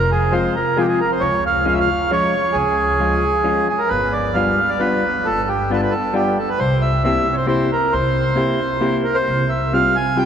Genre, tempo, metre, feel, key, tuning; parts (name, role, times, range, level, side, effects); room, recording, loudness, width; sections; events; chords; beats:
musette waltz; 134 BPM; 3/4; rubato; A4 = 443 Hz
accordion; melody; 0.0-10.3 s; G4 to Ab5; -18 LUFS; right 2 dB
upright bass; bass; 0.0-9.9 s; F1 to Db2; -24 LUFS; equal
hollow-body jazz guitar; accompaniment; 0.3-10.3 s; F3 to G4; -21 LUFS; left 2 dB
wet cathedral reverb, RT60 6.5 s; recorded in a church or concert hall; -16 LUFS; side -8 dB against mid
0.0-10.3 A section
0.0 Fm; 1.2 Db; 3.9 G7; 6.6 C7; 9.3 Csus4
0.32 0.77 | 1.21 1.66 2.10 | 2.55 3.00 3.45 | 3.91 4.36 4.81 | 5.26 5.71 6.15 | 6.59 7.03 7.47 | 7.92 8.36 8.81 | 9.27 9.72 10.17